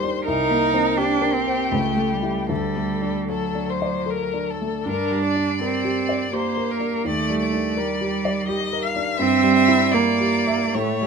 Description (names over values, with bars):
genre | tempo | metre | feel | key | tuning
classical, slow romantic movement for piano quartet | 70-86 BPM | 3/4 | rubato | unclear | A4 = 440 Hz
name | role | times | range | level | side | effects
clear violin | melody | 0.0-11.1 s | G4 to F5 | -25 LUFS | left 7 dB | none
warm baby grand piano | accompaniment | 0.0-11.1 s | C2 to E5 | -25 LUFS | left 1 dB | none
clear cello | second line | 0.3-11.1 s | F#3 to Eb4 | -22 LUFS | right 6 dB | none
room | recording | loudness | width
light reverb | close, detailed microphones | -19 LUFS | side -5 dB against mid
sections
0.0-11.1 A section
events
none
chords
0.3 Cm7; 1.7 A7/C#; 2.5 D; 4.9 Gm; 7.1 Ebmaj7; 9.2 Edim/G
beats
| 0.27 0.97 1.72 | 2.50 3.29 4.08 | 4.88 5.62 6.34 | 7.06 7.77 8.48 | 9.19 9.94 10.75